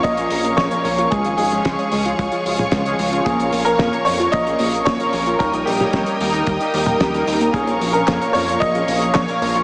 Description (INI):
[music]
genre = italo disco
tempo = 112 BPM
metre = 4/4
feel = straight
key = Bb dorian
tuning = A4 = 440 Hz
[part]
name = bright concert grand piano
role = melody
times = 0.0-9.6 s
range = G4 to Eb5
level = -20 LUFS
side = equal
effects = diffuse ambient delay
[part]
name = clear symphonic string section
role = sustained chords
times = 0.0-9.6 s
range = Ab4 to Eb6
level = -23 LUFS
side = equal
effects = none
[part]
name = wide unison pluck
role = arpeggios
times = 0.0-9.6 s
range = G3 to Db5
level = -24 LUFS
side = equal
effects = cassette tape, analog delay
[part]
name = analog synth brass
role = stabs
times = 0.0-9.6 s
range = Bb2 to Db5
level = -24 LUFS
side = equal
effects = chorus, analog delay
[part]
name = chorused synth bass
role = bass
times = 0.0-9.6 s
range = Ab1 to F2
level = -26 LUFS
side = equal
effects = none
[part]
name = damped 70s drum kit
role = drums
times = 0.0-9.6 s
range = handclaps, hi-hat, snare drum, toms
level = -24 LUFS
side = equal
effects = studio reverb
[part]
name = kick drum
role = drums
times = 0.0-9.3 s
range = none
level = -25 LUFS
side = equal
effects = studio reverb
[sound]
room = wet lush hall reverb, RT60 1.7 s, small room ambience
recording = dreamy mix soaked in reverb, small speaker sound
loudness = -15 LUFS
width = side -28 dB against mid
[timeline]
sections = 0.0-9.6 A section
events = none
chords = 0.0 Bbm; 1.1 Db; 3.3 Bbm; 5.4 Eb; 7.5 Bbm